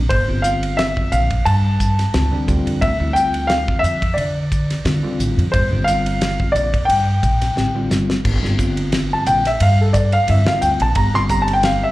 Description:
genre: electric jazz fusion.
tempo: 88 BPM.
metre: 4/4.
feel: swing 54% on 16ths.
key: G dorian.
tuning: A4 = 440 Hz.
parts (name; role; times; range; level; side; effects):
upright bass; bass; 0.0-11.8 s; G1 to D3; -19 LUFS; equal; none.
warm baby grand piano; melody; 0.1-11.9 s; A4 to C6; -19 LUFS; equal; slapback echo, plate reverb.
damped 70s drum kit; drums; 0.1-11.8 s; crash cymbal, hi-hat, kick drum, ride cymbal, snare drum; -23 LUFS; equal; none.
bell-like tine electric piano; accompaniment; 0.3-11.9 s; D3 to G4; -24 LUFS; equal; medium stereo tremolo, plate reverb, slapback echo.
room: light reverb.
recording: live gig heard through the venue's PA, club reverb.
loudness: -15 LUFS.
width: side -17 dB against mid.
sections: 0.0-8.2 A section; 8.2-11.9 B section.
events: drum fill 7.6-8.2; grand piano solo 8.2-11.9.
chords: 0.0 G9sus4; 2.5 Dm9; 5.5 Gm7; 8.2 G7(no3).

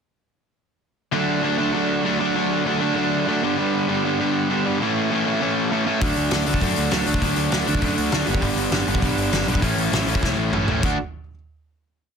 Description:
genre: punk rock.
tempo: 198 BPM.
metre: 4/4.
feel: straight.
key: D major.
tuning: A4 = 440 Hz.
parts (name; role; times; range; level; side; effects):
crunchy overdriven guitar; riff; 1.1-11.0 s; G2 to D4; -23 LUFS; left 12 dB; none.
overdriven electric guitar; riff; 1.1-11.0 s; G2 to F#4; -23 LUFS; right 10 dB; none.
growling picked electric bass; bass; 6.0-11.0 s; G1 to F#2; -26 LUFS; equal; overdrive.
loose indie drum kit; drums; 6.0-10.9 s; crash cymbal, hi-hat, kick drum, snare drum, toms; -24 LUFS; left 1 dB; none.
room: light reverb.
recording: dense, heavily limited modern master.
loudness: -19 LUFS.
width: side -6 dB against mid.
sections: 1.1-10.8 verse; 10.8-12.0 final chord.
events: drum fill 10.2-10.8.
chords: 1.1 D; 3.4 G; 4.8 A; 6.0 D; 8.3 G; 9.6 A; 10.8 D.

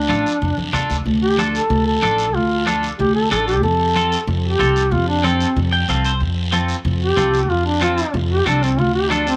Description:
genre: latin, cumbia.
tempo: 186 BPM.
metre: 4/4.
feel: straight.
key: D minor.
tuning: A4 = 440 Hz.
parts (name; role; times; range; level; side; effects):
warm duduk; melody; 0.0-9.4 s; C4 to A4; -22 LUFS; equal; cassette tape.
upright bass; bass; 0.0-9.3 s; A1 to F2; -23 LUFS; equal; none.
twangy electric guitar; accompaniment; 0.1-9.3 s; C4 to G5; -25 LUFS; equal; lush chorus, cassette tape.
congas; percussion; 0.1-9.3 s; none; -29 LUFS; equal; none.
guiro; percussion; 0.1-9.4 s; none; -32 LUFS; equal; none.
room: light reverb, small room ambience.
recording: home recording on cassette.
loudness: -18 LUFS.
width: mono.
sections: 0.0-1.1 A section; 1.1-9.4 B section.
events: drum fill 0.6-1.1; duduk solo 1.1-9.4; clean electric guitar fill 5.6-6.2.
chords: 0.0 Dm; 3.6 F; 8.8 Dm.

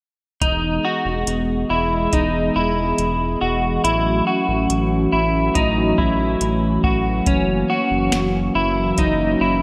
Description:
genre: dream pop.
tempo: 70 BPM.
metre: 4/4.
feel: straight.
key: E major.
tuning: A4 = 441 Hz.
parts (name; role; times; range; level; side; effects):
hollow soft pad; sustained chords; 0.4-9.6 s; E3 to D#5; -23 LUFS; equal; chorus.
clean electric guitar; arpeggios; 0.4-9.6 s; C#4 to F#4; -23 LUFS; equal; analog chorus, delay.
round analog bass; bass; 0.4-9.6 s; E1 to A1; -27 LUFS; equal; none.
soft vintage rhythm box; drums; 0.4-9.2 s; hi-hat, kick drum, snare drum; -24 LUFS; equal; gated reverb.
room: wet lush hall reverb, RT60 2.7 s.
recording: bright 1980s-style digital production.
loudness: -19 LUFS.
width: mono.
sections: 0.4-9.6 A section.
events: none.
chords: 0.4 Emaj7; 3.8 A6; 7.3 F#7.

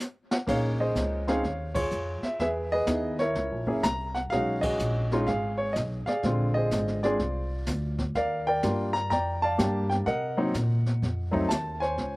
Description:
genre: jazz piano trio.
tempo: 125 BPM.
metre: 4/4.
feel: swing 66% on 8ths.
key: unclear.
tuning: A4 = 440 Hz.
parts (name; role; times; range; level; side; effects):
jazz brush drum kit; drums; 0.0-12.2 s; brushed snare drum, crash cymbal, hi-hat, kick drum, snare drum; -33 LUFS; equal; none.
warm baby grand piano; melody; 0.3-12.2 s; D3 to Bb5; -27 LUFS; equal; none.
upright bass; bass; 0.5-12.2 s; Gb1 to C3; -30 LUFS; equal; none.
room: little or no reverb.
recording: recorded outdoors, with no room sound.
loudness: -25 LUFS.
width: side -21 dB against mid.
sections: 0.5-12.2 A section.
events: band accent 1.7, 4.6.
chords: 0.5 Bbm11; 2.4 Dbm9 (rootless); 3.4 Gb7; 4.3 B6; 6.2 Bb9; 8.2 Ebmaj9; 10.1 Cm7b5; 11.0 F7b9.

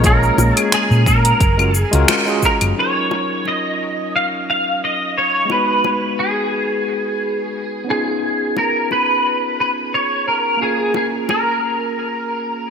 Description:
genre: sunset chillout.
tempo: 88 BPM.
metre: 4/4.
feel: swing 55% on 16ths.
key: unclear.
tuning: A4 = 441 Hz.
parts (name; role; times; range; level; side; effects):
pedal steel guitar; melody; 0.0-12.7 s; G#4 to E#5; -17 LUFS; equal; ensemble chorus, digital delay, shimmer reverb.
overdriven tine electric piano; accompaniment; 0.0-12.7 s; F#3 to C#5; -23 LUFS; equal; auto-pan, shimmer reverb.
hollow-body short-scale fingered electric bass; bass; 0.0-2.7 s; F#1 to A#2; -15 LUFS; equal; none.
deep house drum kit; drums; 0.0-2.7 s; cabasa, claves, finger snaps, hi-hat; -19 LUFS; left 1 dB; overdrive, gated reverb.
electronic kick drum; drums; 0.0-2.6 s; none; -18 LUFS; equal; overdrive.
bongos; percussion; 0.0-11.4 s; none; -26 LUFS; left 5 dB; none.
room: moderate lush hall reverb, RT60 1.9 s, digital ambience.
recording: bright 1980s-style digital production.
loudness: -15 LUFS.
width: side -6 dB against mid.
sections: 0.0-2.8 A section; 2.8-12.7 B section.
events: band accent 2.1-2.4.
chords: 0.0 A#m7; 1.4 F#maj7; 2.8 D#m9; 5.5 G#m7; 7.9 C#7; 10.6 A#m7.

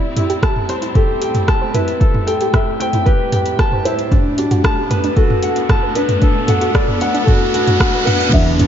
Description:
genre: piano and strings electronica.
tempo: 114 BPM.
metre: 4/4.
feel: straight.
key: unclear.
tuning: A4 = 436 Hz.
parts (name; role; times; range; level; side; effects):
rich symphonic string section; sustained chords; 0.0-8.7 s; A2 to E4; -24 LUFS; left 1 dB; sidechain pumping.
warm grand piano; riff; 0.0-8.7 s; D4 to A5; -20 LUFS; equal; tape echo.
riser, reverse cymbal and impact; sound effects; 3.3-8.7 s; none; -27 LUFS; right 2 dB; none.
felt-muted upright piano; melody; 0.2-8.7 s; G4 to E5; -21 LUFS; left 1 dB; tape echo.
soft round pluck; arpeggios; 0.2-8.7 s; D4 to C5; -26 LUFS; right 2 dB; none.
deep house drum kit; drums; 0.2-8.7 s; crash cymbal, hi-hat, rim click, toms; -20 LUFS; right 1 dB; small room ambience.
electronic kick drum; drums; 0.4-8.4 s; none; -15 LUFS; equal; small room ambience.
dark chamber cello section; bass; 8.3-8.7 s; E2; -15 LUFS; equal; sidechain pumping.
room: moderate concert hall reverb, RT60 1.8 s, small room ambience.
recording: dark, warm production, nothing above 7.5 kHz.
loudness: -13 LUFS.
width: side -9 dB against mid.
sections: 0.0-8.3 A section.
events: build-up 0.0-8.3; riser 3.3-8.3; reverse cymbal 7.3-8.3; impact 8.3-8.7.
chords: 0.0 Am7; 4.1 Bm7.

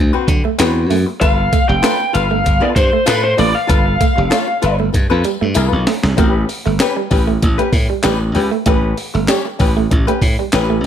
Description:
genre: funk.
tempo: 97 BPM.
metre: 4/4.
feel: straight.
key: A mixolydian.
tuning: A4 = 440 Hz.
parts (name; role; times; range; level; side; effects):
glassy slap bass; bass; 0.0-10.8 s; F1 to D3; -16 LUFS; equal; none.
archtop guitar, miked and amplified; accompaniment; 0.1-10.9 s; C4 to C#5; -20 LUFS; left 7 dB; wah.
electric guitar through a small old amp; riff; 0.3-10.8 s; F#3 to B3; -22 LUFS; right 10 dB; none.
breakbeat sampler-style drum kit; drums; 0.3-10.9 s; handclaps, hi-hat, kick drum, snare drum; -17 LUFS; equal; none.
tambourine; percussion; 0.3-10.7 s; none; -32 LUFS; left 5 dB; none.
lead guitar through a small cranked amp; melody; 1.2-4.8 s; B4 to G5; -17 LUFS; left 1 dB; overdrive.
room: light reverb.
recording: none.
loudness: -12 LUFS.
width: side -9 dB against mid.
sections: 0.0-6.2 A section; 6.2-10.9 B section.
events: drum fill 4.9-6.2.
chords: 0.0 D13; 1.2 G9; 6.2 A9.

